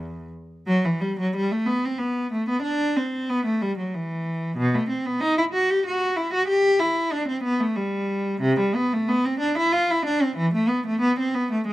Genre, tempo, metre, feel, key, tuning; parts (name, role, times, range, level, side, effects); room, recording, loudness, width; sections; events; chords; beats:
classical, baroque-style suite movement for unaccompanied cello; 93 BPM; 3/4; rubato; E minor, A minor from 8.4 s; A4 = 442 Hz
rich cello; solo; 0.0-11.7 s; E2 to G4; -21 LUFS; equal
light reverb; close, detailed microphones; -21 LUFS; side -16 dB against mid
0.7-11.7 A section
| 0.65 1.33 2.00 | 2.65 3.29 3.93 | 4.57 5.21 5.85 | 6.48 7.11 7.74 | 8.41 9.07 9.71 | 10.36 11.00 11.65